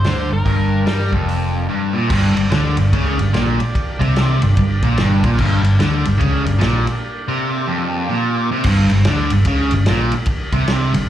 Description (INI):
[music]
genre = blues rock power trio and southern rock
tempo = 147 BPM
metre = 4/4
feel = swing 63% on 8ths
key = G minor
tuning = A4 = 440 Hz
[part]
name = biting lead guitar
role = melody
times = 0.0-1.1 s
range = Bb4 to C5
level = -26 LUFS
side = left 2 dB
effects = wah, overdrive, slapback echo, tape echo
[part]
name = overdriven tonewheel organ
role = sustained chords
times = 0.0-8.6 s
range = G3 to D5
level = -30 LUFS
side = right 3 dB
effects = slow rotary speaker
[part]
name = overdriven electric guitar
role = riff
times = 0.0-11.1 s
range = F2 to G3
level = -18 LUFS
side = equal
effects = slapback echo
[part]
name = vintage muted fingered electric bass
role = bass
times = 0.0-11.1 s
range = F1 to G2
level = -17 LUFS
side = equal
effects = none
[part]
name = vintage drum kit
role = drums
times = 0.0-11.0 s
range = crash cymbal, hi-hat, kick drum, ride cymbal, snare drum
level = -21 LUFS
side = equal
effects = none
[sound]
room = light reverb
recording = live gig heard through the venue's PA, club reverb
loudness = -14 LUFS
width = side -11 dB against mid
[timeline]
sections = 0.0-2.1 A section; 2.1-8.7 B section; 8.7-11.1 B section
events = break 7.0-8.7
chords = 0.0 Gm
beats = 0.06 | 0.48 0.89 1.30 1.71 | 2.12 2.54 2.94 3.35 | 3.76 4.17 4.58 4.99 | 5.40 5.80 6.21 6.62 | 7.03 7.44 7.84 8.25 | 8.66 9.07 9.47 9.88 | 10.29 10.69